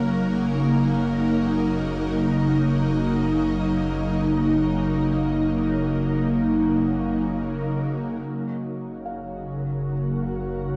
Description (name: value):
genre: ambient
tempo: free time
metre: none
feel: none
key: unclear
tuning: A4 = 440 Hz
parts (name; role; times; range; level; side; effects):
- ethereal airy pad; sustained chords; 0.0-10.8 s; Db3 to Bb4; -24 LUFS; equal; ensemble chorus, built-in reverb, cassette tape
- warm sub bass; bass; 0.0-10.8 s; Gb1; -37 LUFS; equal; none
- felt-muted upright piano; arpeggios; 9.1-10.8 s; F5; -42 LUFS; equal; cassette tape, tape echo
room: moderate spring reverb, RT60 1.5 s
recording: home recording on cassette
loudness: -23 LUFS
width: mono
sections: 0.0-8.3 A section; 8.3-10.8 B section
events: none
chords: 0.0 Ebm7/Gb; 8.3 Gb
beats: free time